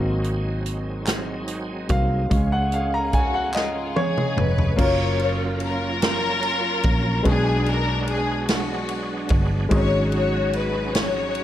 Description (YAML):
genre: slow gospel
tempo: 49 BPM (dotted quarters)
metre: 6/8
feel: straight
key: F# major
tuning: A4 = 440 Hz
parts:
  - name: warm upright piano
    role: accompaniment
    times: 0.0-11.4 s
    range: G#2 to A#5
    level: -27 LUFS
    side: left 1 dB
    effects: none
  - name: bright tonewheel organ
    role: sustained chords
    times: 0.0-11.4 s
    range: C#3 to A#4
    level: -31 LUFS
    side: right 4 dB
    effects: slow rotary speaker, chorus vibrato
  - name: mellow French horn section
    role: sustained chords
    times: 0.0-4.8 s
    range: C#3 to E#5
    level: -36 LUFS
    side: left 1 dB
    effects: none
  - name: fingered electric bass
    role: bass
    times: 0.0-11.4 s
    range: E#1 to C#2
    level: -25 LUFS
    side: equal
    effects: none
  - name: natural country drum kit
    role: drums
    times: 0.2-11.4 s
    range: crash cymbal, hi-hat, kick drum, ride cymbal, snare drum, toms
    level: -25 LUFS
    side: equal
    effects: none
  - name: group handclap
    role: percussion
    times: 1.1-3.9 s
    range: none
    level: -34 LUFS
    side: left 2 dB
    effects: none
  - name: warm studio string section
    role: melody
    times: 3.1-11.4 s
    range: C#4 to C#5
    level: -25 LUFS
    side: left 3 dB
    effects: none
room: light reverb, small room reverb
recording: none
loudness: -20 LUFS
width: side -12 dB against mid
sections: 0.0-4.8 A section; 4.8-11.4 B section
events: upright piano solo 0.0-4.8; drum fill 3.5-4.8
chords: 0.0 G#7; 2.3 C#; 4.8 F#maj7; 7.2 Bm6; 9.7 G#7sus4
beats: 1.07 | 2.31 3.54 | 4.78 6.01 | 7.25 8.48 | 9.71 10.94